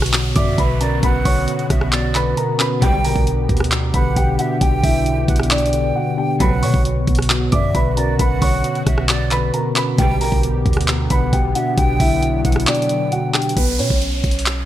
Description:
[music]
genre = hip hop, trap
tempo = 134 BPM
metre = 4/4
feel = half-time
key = B harmonic minor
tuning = A4 = 440 Hz
[part]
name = dark concert grand piano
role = melody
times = 0.0-14.7 s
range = B3 to D6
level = -22 LUFS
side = equal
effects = low-pass filter, digital delay
[part]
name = mellow tine electric piano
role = accompaniment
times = 0.0-13.6 s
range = B2 to D4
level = -22 LUFS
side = equal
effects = medium stereo tremolo, low-pass filter
[part]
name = sweeping resonant pad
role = sustained chords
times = 0.0-13.5 s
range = B2 to G4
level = -28 LUFS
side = left 2 dB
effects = chorus
[part]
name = warm 808-style bass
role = bass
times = 0.0-14.7 s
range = A#1 to B2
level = -21 LUFS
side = equal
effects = none
[part]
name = drum and bass drum kit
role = drums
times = 0.0-14.6 s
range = handclaps, hi-hat, kick drum, rim click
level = -19 LUFS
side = equal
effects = overdrive
[part]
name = downlifter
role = sound effects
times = 0.0-2.8, 13.6-14.7 s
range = none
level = -28 LUFS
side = right 2 dB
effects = none
[part]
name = breathy jazz flute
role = second line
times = 0.4-13.5 s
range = D5 to G5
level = -28 LUFS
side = right 4 dB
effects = digital delay
[part]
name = dark symphonic string section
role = stabs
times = 2.8-3.1, 6.4-6.7, 10.0-10.3 s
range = D2 to G3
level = -26 LUFS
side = right 3 dB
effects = digital delay
[sound]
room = light reverb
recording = bright 1980s-style digital production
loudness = -15 LUFS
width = side -12 dB against mid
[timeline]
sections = 0.0-13.6 A section; 13.6-14.7 B section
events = break 6.0-6.4; kick muted 12.7-13.6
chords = 0.0 Bmadd9; 2.8 G; 6.4 Bmadd9; 10.0 G; 13.6 Bsus2

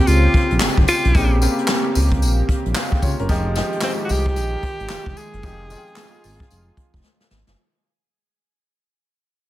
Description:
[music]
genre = R&B, new jack swing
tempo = 112 BPM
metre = 4/4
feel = swing 62% on 16ths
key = unclear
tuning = A4 = 441 Hz
[part]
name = breathy tenor saxophone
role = melody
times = 0.0-7.0 s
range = C4 to Ab4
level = -23 LUFS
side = equal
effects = ping-pong delay
[part]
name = clear baby grand piano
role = accompaniment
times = 0.0-7.6 s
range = Db3 to G5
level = -25 LUFS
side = equal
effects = none
[part]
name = chorused pulse-width pad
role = sustained chords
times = 0.0-7.6 s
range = Db3 to G4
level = -28 LUFS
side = right 1 dB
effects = none
[part]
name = smooth gliding synth bass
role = bass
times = 0.1-7.6 s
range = F1 to Db2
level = -19 LUFS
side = equal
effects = none
[part]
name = jazz brush drum kit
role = drums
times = 0.1-7.6 s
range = handclaps, hi-hat, kick drum, snare drum, tambourine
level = -20 LUFS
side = equal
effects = gated reverb
[sound]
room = studio ambience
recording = none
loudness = -16 LUFS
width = side -15 dB against mid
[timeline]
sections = 0.0-7.6 A section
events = fade-out 0.0-7.6; drum fill 7.0-7.6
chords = 0.0 Bbm69; 3.3 Fm9

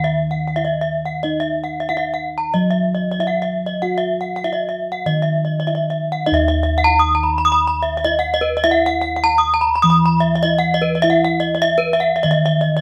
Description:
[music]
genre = Balinese gamelan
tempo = 90-101 BPM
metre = 4/4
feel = straight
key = Eb pelog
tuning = A4 = 438 Hz
[part]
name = gamelan-type bronze metallophone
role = arpeggios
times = 0.0-12.8 s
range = Cb5-20c to Eb6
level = -19 LUFS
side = equal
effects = none
[part]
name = gamelan-type bossed gongs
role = bass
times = 0.0-12.8 s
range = Eb2 to Gb4-30c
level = -23 LUFS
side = equal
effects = none
[sound]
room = moderate studio reverb, RT60 0.9 s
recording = band playing live in one room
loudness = -18 LUFS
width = mono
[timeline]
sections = 0.0-6.3 A section; 6.3-12.8 B section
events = none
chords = none

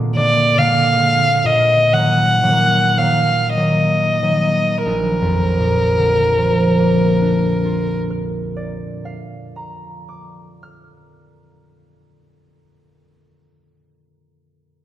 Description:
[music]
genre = classical, romantic duo for violin and harp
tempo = 29-52 BPM (dotted quarters)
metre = 6/8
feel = rubato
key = Bb major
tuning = A4 = 440 Hz
[part]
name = concert harp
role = accompaniment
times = 0.0-13.4 s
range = Bb1 to F6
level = -17 LUFS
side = equal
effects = none
[part]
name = rich violin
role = melody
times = 0.2-8.0 s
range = Bb4 to Gb5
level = -16 LUFS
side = equal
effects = none
[sound]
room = wet scoring stage reverb, RT60 1.5 s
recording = none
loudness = -13 LUFS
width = side -12 dB against mid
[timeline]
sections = 0.0-4.9 A section; 4.9-11.9 B section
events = slowing down 0.0-4.9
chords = 0.0 Bb7; 1.4 Ebm/Bb; 4.9 Bb

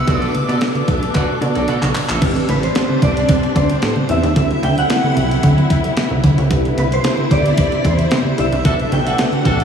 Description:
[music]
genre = early-eighties boogie funk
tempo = 112 BPM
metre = 4/4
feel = straight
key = A dorian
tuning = A4 = 440 Hz
[part]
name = shimmering bell with halo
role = melody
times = 0.0-9.6 s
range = B4 to D6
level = -22 LUFS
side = equal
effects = ensemble chorus, analog delay
[part]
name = warm studio string section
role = sustained chords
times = 0.0-9.6 s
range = B2 to E4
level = -23 LUFS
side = left 1 dB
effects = none
[part]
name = electric guitar at the edge of break-up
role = riff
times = 0.0-2.3 s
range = F#4 to E5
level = -29 LUFS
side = right 3 dB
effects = none
[part]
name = plucky analog bass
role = bass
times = 0.0-9.6 s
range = A1 to C3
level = -18 LUFS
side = right 1 dB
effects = none
[part]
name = mellow tine electric piano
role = accompaniment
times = 0.1-9.6 s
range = C4 to E5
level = -22 LUFS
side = right 1 dB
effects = medium stereo tremolo
[part]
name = clean 12-bit digital drum machine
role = drums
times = 0.1-9.6 s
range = crash cymbal, handclaps, hi-hat, kick drum, snare drum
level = -20 LUFS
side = right 1 dB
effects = none
[part]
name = congas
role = percussion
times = 0.1-9.6 s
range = none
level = -24 LUFS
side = equal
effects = none
[part]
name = clear horn section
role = second line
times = 8.6-9.6 s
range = D4 to A4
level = -24 LUFS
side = equal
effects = none
[sound]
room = wet huge ambient reverb, RT60 8.2 s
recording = dreamy mix soaked in reverb, studio reverb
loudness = -13 LUFS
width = side -7 dB against mid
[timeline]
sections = 0.0-2.2 A section; 2.2-9.6 B section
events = drum fill 1.1-2.2; band accent 8.6-9.6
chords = 0.1 Bm7; 2.2 Am11; 4.4 D9; 6.5 Cmaj7; 8.6 Bm7

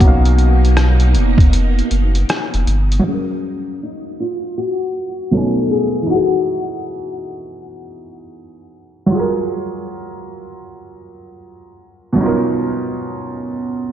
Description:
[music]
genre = lo-fi hip hop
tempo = 79 BPM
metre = 4/4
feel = swing 64% on 16ths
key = F# major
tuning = A4 = 444 Hz
[part]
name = nylon-string guitar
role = melody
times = 0.0-8.7 s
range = C#4 to A4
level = -22 LUFS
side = left 5 dB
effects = analog chorus, low-pass filter, diffuse ambient delay
[part]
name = felt-muted upright piano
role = accompaniment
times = 0.0-13.9 s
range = B2 to G#5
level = -20 LUFS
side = right 2 dB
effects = cassette tape, low-pass filter
[part]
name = phased string machine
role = sustained chords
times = 0.0-3.0 s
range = B2 to D#4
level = -23 LUFS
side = right 1 dB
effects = ensemble chorus, phaser, low-pass filter
[part]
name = warm sub bass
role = bass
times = 0.0-3.0 s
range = E#1 to B1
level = -13 LUFS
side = equal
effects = none
[part]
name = trip hop sampler-style drum kit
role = drums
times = 0.0-3.0 s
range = hi-hat, kick drum, rim click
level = -15 LUFS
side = equal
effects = none
[sound]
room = moderate plate reverb, RT60 2.0 s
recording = dreamy mix soaked in reverb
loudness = -14 LUFS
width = side -11 dB against mid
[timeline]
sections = 0.0-3.0 A section; 3.0-13.9 B section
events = break 1.5-3.0; filter sweep 3.0-13.9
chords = 0.0 Bmaj9#11; 3.0 F#maj9; 5.3 B13; 6.1 Emaj9; 9.1 F#maj9; 12.2 Bmaj9#11

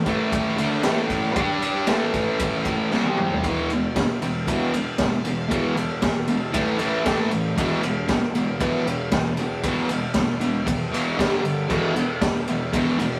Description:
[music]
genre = garage rock duo or trio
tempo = 116 BPM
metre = 4/4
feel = straight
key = unclear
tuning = A4 = 440 Hz
[part]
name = fuzz guitar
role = riff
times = 0.1-13.2 s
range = E2 to G4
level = -25 LUFS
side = equal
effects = distortion
[part]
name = raw garage drum kit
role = drums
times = 0.1-13.1 s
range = crash cymbal, kick drum, ride cymbal, snare drum, toms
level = -27 LUFS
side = equal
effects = none
[sound]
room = moderate small room reverb, RT60 0.6 s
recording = rough rehearsal-room recording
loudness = -23 LUFS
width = mono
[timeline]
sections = 0.0-3.4 A section; 3.4-13.2 B section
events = drum fill 2.9-3.4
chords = 0.0 A5; 1.4 G5; 1.9 A5; 2.9 C5; 3.4 E5; 6.6 A5; 7.6 E5; 11.2 G5; 11.7 E5

